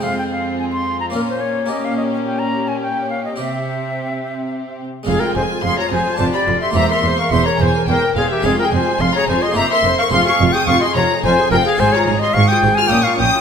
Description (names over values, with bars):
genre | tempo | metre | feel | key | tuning
classical, baroque-style concerto movement with solo episodes | 107 BPM | 3/4 | straight | F minor | A4 = 440 Hz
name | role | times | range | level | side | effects
bright concert flute | melody | 0.0-13.4 s | G4 to C6 | -19 LUFS | left 2 dB | none
rich chamber violin section | melody | 0.0-13.4 s | G4 to F6 | -23 LUFS | left 4 dB | none
rich chamber violin section | second line | 0.0-13.4 s | F4 to F6 | -24 LUFS | left 2 dB | none
harpsichord | accompaniment | 0.0-13.4 s | E2 to Db5 | -24 LUFS | right 1 dB | none
rich chamber viola section | accompaniment | 0.0-13.4 s | C4 to C5 | -24 LUFS | left 2 dB | none
rich studio cello section | bass | 0.0-13.3 s | E2 to C3 | -22 LUFS | right 3 dB | none
clear studio double bass section | bass | 5.1-13.3 s | E1 to Bb1 | -23 LUFS | right 4 dB | none
room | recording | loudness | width
moderate recital hall reverb, RT60 1.4 s | none | -14 LUFS | side -7 dB against mid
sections
0.0-5.1 A section; 5.1-13.4 B section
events
none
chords
0.0 Fm; 1.1 Bbm; 1.7 Gdim/Bb; 3.4 C; 5.1 Fm; 6.2 G7/F; 6.8 C7/E; 8.4 Fm; 9.6 C7/F; 10.1 Fm; 11.8 Fm/Ab; 12.9 Bbm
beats
| 0.03 0.59 1.15 | 1.70 2.26 2.82 | 3.38 3.95 4.52 | 5.08 5.64 6.21 | 6.76 7.32 7.88 | 8.44 9.00 9.56 | 10.12 10.68 11.24 | 11.79 12.35 12.90